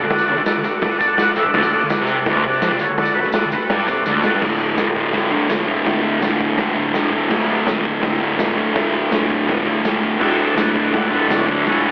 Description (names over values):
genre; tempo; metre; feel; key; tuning
garage rock duo or trio; 166 BPM; 4/4; straight; D major; A4 = 440 Hz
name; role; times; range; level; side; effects
combo organ; sustained chords; 0.0-4.4, 10.2-11.9 s; F#4 to A5; -21 LUFS; equal; lush chorus, cassette tape
thick fuzz guitar; riff; 0.0-11.9 s; D2 to D3; -21 LUFS; equal; distortion, cassette tape
raw garage drum kit; drums; 0.1-11.8 s; crash cymbal, hi-hat, kick drum, snare drum; -23 LUFS; equal; cassette tape
tambourine; percussion; 0.2-11.4 s; none; -41 LUFS; equal; none
room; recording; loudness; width
light reverb, small room ambience; home recording on cassette, telephone sound; -18 LUFS; mono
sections
0.0-4.4 A section; 4.4-11.9 B section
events
transistor combo organ fill 0.8-1.5; drum fill 4.1-4.4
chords
0.0 D